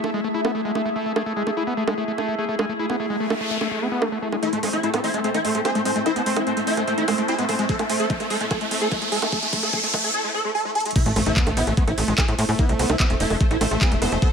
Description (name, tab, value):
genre	psychedelic trance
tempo	147 BPM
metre	4/4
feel	straight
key	A harmonic minor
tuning	A4 = 439 Hz
part	pulsing gated texture	sustained chords	0.0-14.3 s	A3 to C5	-29 LUFS	equal	chorus, built-in reverb, sidechain pumping
part	screaming distorted acid line	riff	0.0-14.3 s	G#3 to E4	-27 LUFS	equal	distortion, chorus, auto-pan, cassette tape, sidechain pumping, digital delay
part	garage drum kit	drums	0.0-14.3 s	bongos, crash cymbal, handclaps, hi-hat, ride cymbal	-27 LUFS	right 4 dB	overdrive, high-pass filter on perc, high-pass filter on hats, high-pass filter on cymbals, high-pass filter on snare
part	ethereal airy pad	texture	0.0-14.3 s	A3 to E5	-31 LUFS	left 1 dB	ensemble chorus, built-in reverb, phaser, sidechain pumping
part	noise sweep, riser and sub drop	sound effects	3.1-12.6 s	none	-28 LUFS	equal	none
part	swarming rave lead	melody	4.4-14.3 s	A3 to A4	-25 LUFS	equal	chorus, phaser, cassette tape, sidechain pumping, digital delay
part	electronic kick drum	drums	7.7-14.3 s	none	-21 LUFS	equal	overdrive
part	tight sequencer bass	bass	11.1-14.2 s	E1 to A2	-24 LUFS	equal	none
part	vowel-sweep wobble bass	second line	13.0-13.9 s	A3 to C4	-40 LUFS	right 4 dB	none
room	light reverb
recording	high-pass filter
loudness	-20 LUFS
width	side -6 dB against mid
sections	0.0-4.4 A section; 4.4-11.0 B section; 11.0-14.3 C section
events	filter sweep on synth texture 0.0-4.4; noise sweep 3.1-4.4; build-up 4.4-11.0; filter sweep on acid bass 4.4-11.0; filter sweep 4.4-11.0; riser 6.6-10.1; drum fill 7.7-10.1, 10.8; drop 11.0-14.3; impact 11.0-12.6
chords	0.0 A5